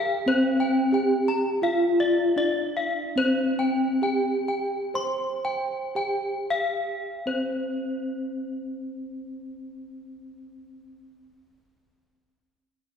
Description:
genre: gamelan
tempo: 52-94 BPM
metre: 4/4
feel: straight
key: unclear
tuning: A4 = 440 Hz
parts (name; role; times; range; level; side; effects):
- gamelan-type bronze metallophone; melody; 0.0-11.0 s; C4 to C5; -25 LUFS; equal; none
- gamelan-type bronze metallophone; arpeggios; 0.0-11.0 s; C5 to C6; -28 LUFS; left 2 dB; none
room: wet concert hall reverb, RT60 2.4 s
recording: heard from further back in the room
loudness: -23 LUFS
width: side -7 dB against mid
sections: 0.0-7.1 A section; 7.1-11.7 B section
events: slowing down 0.3-7.1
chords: none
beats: | 0.28 0.93 1.63 2.37 | 3.17 4.02 4.95 5.96 | 7.06 8.22 9.38 10.54

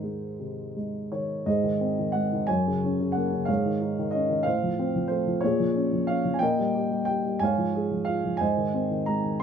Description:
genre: classical, lyrical solo piano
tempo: 60 BPM (dotted quarters)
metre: 6/8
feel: rubato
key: unclear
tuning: A4 = 439 Hz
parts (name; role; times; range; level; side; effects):
- dark grand piano; solo; 0.0-9.4 s; Gb2 to Bb5; -24 LUFS; equal; none
room: light reverb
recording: none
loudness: -24 LUFS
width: side -7 dB against mid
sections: 0.0-1.5 A section; 1.5-9.4 B section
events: none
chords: 0.0 Ab; 2.5 Gb; 3.5 Absus4; 4.5 F/A; 5.4 Bbm7; 6.4 Eb/Bb; 7.4 Db/Ab; 8.4 Ab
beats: 0.41 | 1.47 2.48 | 3.48 4.46 | 5.43 6.41 | 7.41 8.41 | 9.41

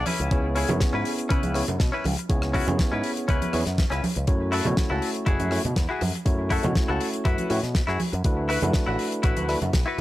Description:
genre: nu-disco, nu disco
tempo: 121 BPM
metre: 4/4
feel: straight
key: unclear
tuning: A4 = 438 Hz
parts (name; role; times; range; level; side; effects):
- direct-recorded clean electric guitar; riff; 0.0-10.0 s; C#4 to B4; -30 LUFS; left 2 dB; lush chorus, tape echo
- picked electric bass with an envelope filter; bass; 0.0-10.0 s; F#1 to C#3; -28 LUFS; equal; none
- damped 70s drum kit; drums; 0.1-10.0 s; hi-hat, rim click, snare drum; -32 LUFS; left 2 dB; none
- congas; percussion; 0.1-10.0 s; none; -30 LUFS; right 2 dB; none
- tine electric piano; accompaniment; 0.3-9.6 s; A3 to C#5; -29 LUFS; equal; tape echo
- electronic kick drum; drums; 0.3-9.8 s; none; -24 LUFS; equal; none
room: small room ambience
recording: dry, gritty hardware recording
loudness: -22 LUFS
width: side -16 dB against mid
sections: 0.0-10.0 A section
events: none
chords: 0.1 C#m7; 4.3 F#m7; 8.2 D69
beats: | 0.31 0.81 1.30 1.80 | 2.29 2.79 3.29 3.78 | 4.28 4.78 5.27 5.77 | 6.26 6.76 7.25 7.75 | 8.25 8.74 9.24 9.73

